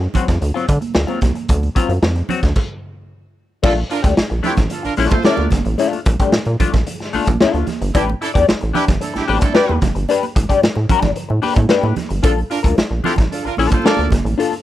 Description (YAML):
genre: funk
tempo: 112 BPM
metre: 4/4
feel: straight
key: unclear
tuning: A4 = 437 Hz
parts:
  - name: hollow-body jazz guitar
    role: accompaniment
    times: 0.0-14.5 s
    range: F#3 to D5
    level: -19 LUFS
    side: left 6 dB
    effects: wah
  - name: rubbery square bass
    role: bass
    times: 0.0-14.3 s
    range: F#1 to D3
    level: -19 LUFS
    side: equal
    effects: none
  - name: raw garage drum kit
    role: drums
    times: 0.1-14.6 s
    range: crash cymbal, hi-hat, kick drum, snare drum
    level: -18 LUFS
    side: equal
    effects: none
  - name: congas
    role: percussion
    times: 0.1-14.6 s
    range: none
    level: -26 LUFS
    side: right 8 dB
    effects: none
  - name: warm horn section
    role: second line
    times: 3.6-14.1 s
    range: C4 to D5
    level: -21 LUFS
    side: right 4 dB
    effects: none
room: small room ambience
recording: none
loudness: -14 LUFS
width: side -13 dB against mid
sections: 0.0-3.6 A section; 3.6-14.6 B section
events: stop 2.6-3.6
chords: 0.0 D7#9; 3.6 Bbmaj7; 7.9 A9sus4; 12.2 Bbmaj7